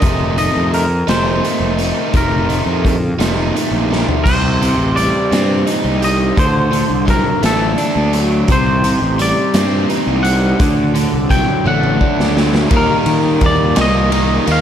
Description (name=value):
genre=indie rock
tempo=57 BPM (dotted quarters)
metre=6/8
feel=straight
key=unclear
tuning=A4 = 439 Hz
part: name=twangy electric guitar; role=melody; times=0.0-14.6 s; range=A4 to G5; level=-20 LUFS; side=left 1 dB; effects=slapback echo
part: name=overdriven electric guitar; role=riff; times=0.0-14.6 s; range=C3 to Eb4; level=-17 LUFS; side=equal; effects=none
part: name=fuzz picked electric bass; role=bass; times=0.0-14.6 s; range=F1 to Eb3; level=-18 LUFS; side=equal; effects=overdrive
part: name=raw garage drum kit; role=drums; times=0.0-14.6 s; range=crash cymbal, hi-hat, kick drum, ride cymbal, snare drum, toms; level=-18 LUFS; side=equal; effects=none
part: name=bright tonewheel organ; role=sustained chords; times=8.5-14.6 s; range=C3 to A4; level=-27 LUFS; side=equal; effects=none
room=light reverb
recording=dark, warm production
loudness=-12 LUFS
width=side -9 dB against mid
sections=0.0-4.3 A section; 4.3-12.7 B section; 12.7-14.6 C section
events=drum fill 3.9-4.3, 11.7-12.7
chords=0.0 F7sus4; 4.3 Cm; 6.4 D; 8.5 Cm; 10.6 D; 12.7 Ebadd9